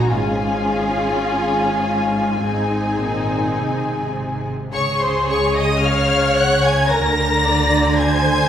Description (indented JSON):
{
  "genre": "classical, slow romantic movement for string orchestra",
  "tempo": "51-58 BPM",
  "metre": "4/4",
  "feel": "rubato",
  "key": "Db major",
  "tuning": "A4 = 440 Hz",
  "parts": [
    { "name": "clear symphonic violin section", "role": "melody", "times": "0.0-8.5 s", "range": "Ab5 to Bb6", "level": "-22 LUFS", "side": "left 3 dB", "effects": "none" },
    { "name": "clear symphonic violin section", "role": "second line", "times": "0.0-8.5 s", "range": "Ab4 to Bb5", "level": "-23 LUFS", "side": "left 1 dB", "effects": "none" },
    { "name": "clear studio viola section", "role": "accompaniment", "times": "0.0-8.5 s", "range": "C4 to D5", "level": "-22 LUFS", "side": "equal", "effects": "none" },
    { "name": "rich symphonic cello section", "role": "bass", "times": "0.0-8.5 s", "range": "Ab2 to D3", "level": "-22 LUFS", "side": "right 1 dB", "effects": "none" },
    { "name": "rich symphonic double bass section", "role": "bass", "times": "0.0-8.5 s", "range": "Ab1 to D2", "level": "-25 LUFS", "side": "right 1 dB", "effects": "none" }
  ],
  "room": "wet scoring stage reverb, RT60 1.6 s",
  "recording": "heard from further back in the room",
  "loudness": "-16 LUFS",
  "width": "side -9 dB against mid",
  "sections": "0.0-4.7 A section; 4.7-8.5 B section",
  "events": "none",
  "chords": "0.1 Db/Ab; 2.4 Ab; 4.7 Db5; 6.9 Bb7/D"
}